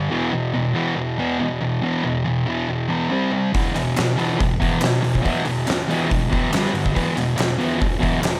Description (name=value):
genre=garage rock duo or trio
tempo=140 BPM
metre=4/4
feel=straight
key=E minor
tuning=A4 = 441 Hz
part: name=thick fuzz guitar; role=riff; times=0.0-8.4 s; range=E2 to C4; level=-22 LUFS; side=equal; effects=distortion
part: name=oversized low-tuned drum kit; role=drums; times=3.5-8.4 s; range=hi-hat, kick drum, snare drum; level=-25 LUFS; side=equal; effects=none
part: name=group handclap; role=percussion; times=3.8-8.3 s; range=none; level=-36 LUFS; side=equal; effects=none
room=light reverb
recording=none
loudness=-21 LUFS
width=mono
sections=0.0-8.4 A section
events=none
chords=0.1 E5; 3.1 C5; 3.5 E5; 6.5 G5; 7.0 E5